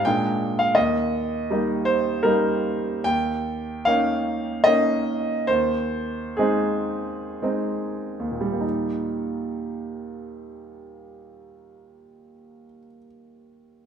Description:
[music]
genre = classical, romantic character piece for solo piano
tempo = 48-86 BPM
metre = 3/4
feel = rubato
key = Eb major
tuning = A4 = 441 Hz
[part]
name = bright grand piano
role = solo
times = 0.0-13.9 s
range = Eb2 to G5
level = -21 LUFS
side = right 1 dB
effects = none
[sound]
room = moderate recital hall reverb, RT60 1.6 s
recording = minimal, uncompressed stereo recording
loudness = -21 LUFS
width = side -8 dB against mid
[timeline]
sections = 0.0-3.0 A section; 3.0-8.6 B section; 8.6-13.9 C section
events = slowing down 1.9-8.6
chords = 0.1 Bb7; 0.8 Eb; 3.0 Eb7; 5.5 Ab/Eb; 8.6 Eb

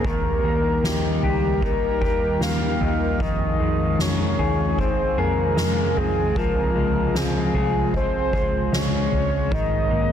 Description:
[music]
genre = dream pop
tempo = 76 BPM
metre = 4/4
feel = straight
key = unclear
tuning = A4 = 445 Hz
[part]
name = soft octave-layered synth lead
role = melody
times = 0.0-10.1 s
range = G4 to F5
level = -25 LUFS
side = left 1 dB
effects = chorus, tape echo
[part]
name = lush unison pad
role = sustained chords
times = 0.0-10.1 s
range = C3 to Bb4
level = -27 LUFS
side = equal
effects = chorus
[part]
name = electric guitar at the edge of break-up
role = arpeggios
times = 0.0-10.1 s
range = Eb3 to Ab4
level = -27 LUFS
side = left 4 dB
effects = lush chorus, tape echo
[part]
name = vintage muted picked electric bass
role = bass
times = 0.0-10.1 s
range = Ab1 to F2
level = -26 LUFS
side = equal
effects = none
[part]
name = soft-mallet drum kit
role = drums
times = 0.0-9.7 s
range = kick drum, snare drum, toms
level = -26 LUFS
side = right 1 dB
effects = none
[part]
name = folk marimba with medium mallets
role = texture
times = 4.8-10.0 s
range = none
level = barely audible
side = none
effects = none
[sound]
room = light reverb, studio reverb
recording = dense, heavily limited modern master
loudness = -19 LUFS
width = side -9 dB against mid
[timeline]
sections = 0.0-10.1 A section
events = none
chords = 0.0 Eb; 3.2 Fm7; 6.4 Dbmaj7; 9.5 Abadd9

